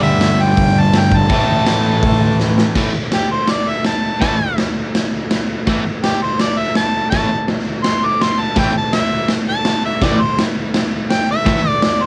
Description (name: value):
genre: garage rock duo or trio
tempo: 165 BPM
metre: 4/4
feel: straight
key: A minor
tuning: A4 = 441 Hz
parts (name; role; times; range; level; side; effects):
- bright harmonica; melody; 0.0-12.1 s; G4 to D6; -21 LUFS; equal; overdrive, cassette tape
- crunchy overdriven guitar; riff; 0.0-11.6 s; G2 to A3; -18 LUFS; equal; cassette tape
- raw garage drum kit; drums; 0.2-11.9 s; crash cymbal, hi-hat, kick drum, snare drum; -19 LUFS; equal; cassette tape
room: light reverb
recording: home recording on cassette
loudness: -16 LUFS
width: mono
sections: 0.0-2.8 A section; 2.8-12.1 B section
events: drum fill 2.4-2.8; harmonica solo 2.8-12.1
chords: 0.0 G5; 1.3 A5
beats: 0.21 0.58 0.94 | 1.30 1.67 2.03 2.40 | 2.76 3.12 3.49 3.85 | 4.22 4.58 4.95 5.31 | 5.67 6.04 6.40 6.76 | 7.13 7.49 7.85 8.21 | 8.58 8.94 9.30 9.66 | 10.02 10.38 10.75 11.11 | 11.47 11.83